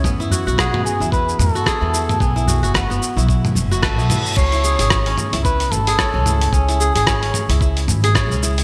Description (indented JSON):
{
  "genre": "organic downtempo",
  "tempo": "111 BPM",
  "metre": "4/4",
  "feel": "swing 58% on 16ths",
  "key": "C# minor",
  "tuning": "A4 = 438 Hz",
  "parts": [
    { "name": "kora", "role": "arpeggios", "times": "0.0-8.6 s", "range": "B3 to C#5", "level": "-26 LUFS", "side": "equal", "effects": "delay" },
    { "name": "upright bass", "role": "bass", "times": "0.0-8.6 s", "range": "F#1 to E2", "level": "-22 LUFS", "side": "equal", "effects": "none" },
    { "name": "dusty soul sampler-style drum kit", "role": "drums", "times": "0.0-8.6 s", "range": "crash cymbal, hi-hat, rim click, shaker, toms", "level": "-24 LUFS", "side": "equal", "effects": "gated reverb" },
    { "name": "electronic kick drum", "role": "drums", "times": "0.0-8.3 s", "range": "none", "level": "-23 LUFS", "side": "equal", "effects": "none" },
    { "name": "tabla", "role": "percussion", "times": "0.3-4.3 s", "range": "none", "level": "-29 LUFS", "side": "equal", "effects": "none" },
    { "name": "trumpet with cup mute", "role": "melody", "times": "0.6-7.6 s", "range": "F#4 to C#5", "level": "-25 LUFS", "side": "equal", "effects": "delay" },
    { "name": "reverse cymbal", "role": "sound effects", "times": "3.8-4.4 s", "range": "none", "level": "-31 LUFS", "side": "equal", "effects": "none" }
  ],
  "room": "moderate lush hall reverb, RT60 2.7 s",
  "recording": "bright 1980s-style digital production",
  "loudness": "-17 LUFS",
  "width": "mono",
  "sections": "0.0-4.4 A section; 4.4-8.6 B section",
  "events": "reverse cymbal 3.8-4.4",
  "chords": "0.0 Eadd9; 2.2 Bsus4; 4.4 C#m"
}